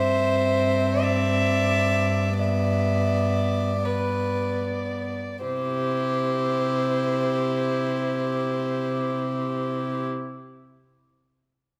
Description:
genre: classical, slow romantic movement for string quartet.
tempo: 36-48 BPM.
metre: 4/4.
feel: rubato.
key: C major.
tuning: A4 = 440 Hz.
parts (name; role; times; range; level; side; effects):
dark violin; melody; 0.0-10.0 s; C5 to E5; -30 LUFS; equal; none.
rich violin; second line; 0.0-10.1 s; G4 to E5; -30 LUFS; equal; none.
warm viola; accompaniment; 0.0-10.1 s; B3 to E4; -33 LUFS; equal; none.
rich cello; bass; 0.0-10.1 s; G2 to C3; -29 LUFS; equal; none.
room: moderate recital hall reverb, RT60 1.6 s.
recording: none.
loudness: -24 LUFS.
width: mono.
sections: 0.0-5.4 A section; 5.4-11.8 B section.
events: slowing down 0.0-5.4.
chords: 0.0 C/G; 2.4 G; 5.4 C.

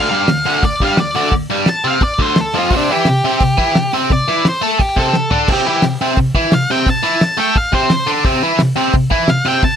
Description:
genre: garage rock duo or trio.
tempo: 173 BPM.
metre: 4/4.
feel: straight.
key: unclear.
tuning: A4 = 440 Hz.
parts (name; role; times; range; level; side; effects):
octave-fuzz lead guitar; melody; 0.0-9.8 s; D4 to A5; -17 LUFS; left 1 dB; distortion, digital delay.
biting overdriven guitar; riff; 0.0-9.8 s; D2 to A4; -15 LUFS; equal; none.
cloth-damped thuddy drum kit; drums; 0.3-9.7 s; crash cymbal, hi-hat, kick drum, snare drum, toms; -18 LUFS; equal; none.
room: light reverb.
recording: none.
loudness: -12 LUFS.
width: side -8 dB against mid.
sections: 0.0-9.8 A section.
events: lead electric guitar solo 0.0-9.8; drum fill 5.1-5.5.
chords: 0.0 Dmadd11; 2.7 C5.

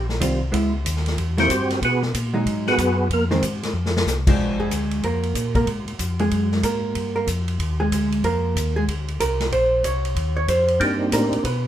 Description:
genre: soul jazz organ trio.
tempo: 187 BPM.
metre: 4/4.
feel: swing 63% on 8ths.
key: Bb mixolydian from 4.4 s.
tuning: A4 = 440 Hz.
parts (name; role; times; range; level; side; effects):
percussive tonewheel organ; melody; 0.0-3.2, 10.8-11.4 s; Bb3 to C5; -20 LUFS; equal; slow rotary speaker, chorus vibrato.
mellow tonewheel organ; bass; 0.0-11.7 s; F1 to B2; -24 LUFS; left 1 dB; slow rotary speaker.
vintage drum kit; drums; 0.1-11.5 s; crash cymbal, hi-hat, kick drum, ride cymbal, snare drum; -27 LUFS; equal; none.
hollow-body jazz guitar; accompaniment; 0.2-11.7 s; Eb3 to Db5; -22 LUFS; right 1 dB; none.
room: moderate large studio reverb, RT60 0.9 s.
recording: minimal, uncompressed stereo recording.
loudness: -19 LUFS.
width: side -11 dB against mid.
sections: 0.0-4.4 A section; 4.4-11.7 A section.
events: tonewheel organ solo 0.0-4.4; drum fill 3.7-4.1; hollow-body jazz guitar solo 4.4-11.7.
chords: 0.0 Eb69; 0.5 Dbm7; 1.2 C7#11; 1.8 B6; 3.1 Fm7; 3.7 F5; 4.4 Bb7; 5.7 Absus2; 7.0 Gm7; 8.2 Fm7; 8.9 Bb; 9.5 Ebsus2; 10.8 Cm7.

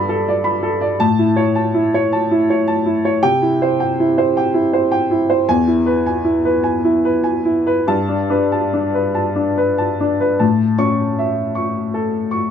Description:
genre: neoclassical minimalist piano.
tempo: 46-57 BPM (dotted quarters).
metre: 6/8.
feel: rubato.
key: unclear.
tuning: A4 = 441 Hz.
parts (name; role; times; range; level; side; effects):
warm upright piano; solo; 0.0-12.5 s; E2 to C#6; -14 LUFS; equal; none.
room: light reverb.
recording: none.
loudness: -14 LUFS.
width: side -8 dB against mid.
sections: 0.0-10.4 A section; 10.4-12.5 A section.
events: none.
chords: 0.0 Gadd9; 1.0 A; 3.2 C; 5.5 E; 7.9 Gadd9; 10.4 A.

